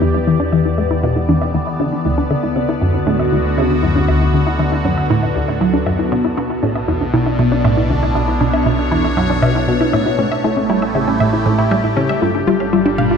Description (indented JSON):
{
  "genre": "ambient, sequencer-driven space music",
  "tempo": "118 BPM",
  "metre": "4/4",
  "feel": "straight",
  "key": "unclear",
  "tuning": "A4 = 440 Hz",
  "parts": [
    { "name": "phased analog pad", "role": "sustained chords", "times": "0.0-13.2 s", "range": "B2 to D5", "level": "-18 LUFS", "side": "left 1 dB", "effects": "phaser, chorus" },
    { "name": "wide unison pluck", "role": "arpeggios", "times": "0.0-13.2 s", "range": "C#4 to F5", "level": "-21 LUFS", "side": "equal", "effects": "auto-pan, analog delay" },
    { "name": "resonant blip pluck", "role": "riff", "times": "0.0-13.1 s", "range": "D2 to A3", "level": "-18 LUFS", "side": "equal", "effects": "chorus, phaser, analog delay" },
    { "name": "analog drone", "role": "bass", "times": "0.0-13.2 s", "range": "G1 to E2", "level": "-22 LUFS", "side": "equal", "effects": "chorus" },
    { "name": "wind-like tuned noise texture", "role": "texture", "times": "0.0-13.2 s", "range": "A4 to A5", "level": "-32 LUFS", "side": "left 1 dB", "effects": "built-in reverb" }
  ],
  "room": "wet echo chamber reverb, RT60 2.0 s",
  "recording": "echo-heavy mix",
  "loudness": "-14 LUFS",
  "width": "side -6 dB against mid",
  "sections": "0.0-13.2 A section",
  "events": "fade-in on synth texture 0.0-13.2; filter sweep on synth arpeggio sound 0.0-13.2",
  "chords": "0.0 Em7; 2.1 D6; 6.1 Bmadd9; 10.2 A7; 12.2 G7",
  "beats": "| 0.02 0.53 1.03 1.54 | 2.05 2.56 3.07 3.58 | 4.09 4.59 5.10 5.61 | 6.12 6.63 7.14 7.64 | 8.15 8.66 9.17 9.68 | 10.19 10.70 11.20 11.71 | 12.22 12.73"
}